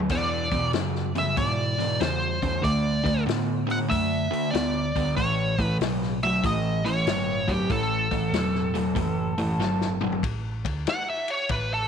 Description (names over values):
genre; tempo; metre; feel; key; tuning
blues rock power trio and southern rock; 95 BPM; 4/4; swing 66% on 8ths; A mixolydian; A4 = 440 Hz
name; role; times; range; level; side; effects
sludgy distorted guitar; riff; 0.0-10.2 s; E2 to B3; -26 LUFS; equal; overdrive
hollow-body short-scale picked electric bass; bass; 0.0-11.9 s; E1 to A2; -31 LUFS; right 1 dB; none
vintage drum kit; drums; 0.0-11.7 s; crash cymbal, hi-hat, kick drum, ride cymbal, snare drum, toms; -31 LUFS; left 4 dB; none
dark smooth lead guitar; melody; 0.1-11.9 s; G4 to F#5; -28 LUFS; equal; wah, overdrive
room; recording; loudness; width
light reverb, small room ambience; 1960s-style stereo; -23 LUFS; side -7 dB against mid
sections
0.0-10.2 A section; 10.2-11.9 B section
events
drum fill 9.6-10.2; lead electric guitar solo 10.2-11.9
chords
0.1 E7; 2.6 D; 5.2 A7; 10.2 Asus4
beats
| 0.10 0.74 1.37 2.01 | 2.64 3.27 3.91 4.54 | 5.17 5.81 6.44 7.07 | 7.71 8.34 8.97 9.61 | 10.24 10.87 11.50